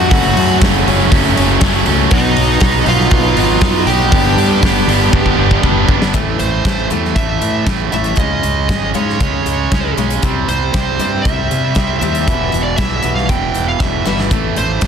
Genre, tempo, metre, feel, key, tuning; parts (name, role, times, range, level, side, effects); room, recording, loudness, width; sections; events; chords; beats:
quiet-loud alternative rock; 118 BPM; 4/4; straight; A4 = 439 Hz
smooth overdriven lead guitar; melody; 0.0-14.9 s; D#4 to G5; -19 LUFS; right 1 dB; analog delay
fuzz guitar; riff; 0.0-6.1 s; F#2 to D#4; -20 LUFS; left 1 dB; distortion
overdriven electric guitar; riff; 0.0-6.1 s; F#2 to D#4; -19 LUFS; left 15 dB
overdriven electric guitar; riff; 0.0-14.9 s; E2 to D#4; -18 LUFS; right 14 dB
fuzz fingered electric bass; bass; 0.0-14.9 s; E1 to C3; -19 LUFS; equal; overdrive
big rock drum kit; drums; 0.1-14.9 s; hi-hat, kick drum, snare drum; -17 LUFS; equal
picked steel-string acoustic guitar; arpeggios; 6.1-14.9 s; A2 to C#4; -24 LUFS; left 12 dB
studio ambience; dense, heavily limited modern master; -11 LUFS; side -7 dB against mid
0.0-6.1 A section; 6.1-14.9 B section
drum fill 5.1-6.1, 13.8-14.3
0.1 F#m; 2.1 B; 4.1 G; 6.1 Am; 8.2 C#5; 10.2 C; 12.3 Em; 14.3 Am
| 0.11 0.61 1.11 1.61 | 2.11 2.61 3.12 3.62 | 4.12 4.62 5.13 5.63 | 6.14 6.65 7.16 7.67 | 8.18 8.69 9.20 9.71 | 10.22 10.73 11.25 11.76 | 12.27 12.78 13.29 13.80 | 14.31 14.82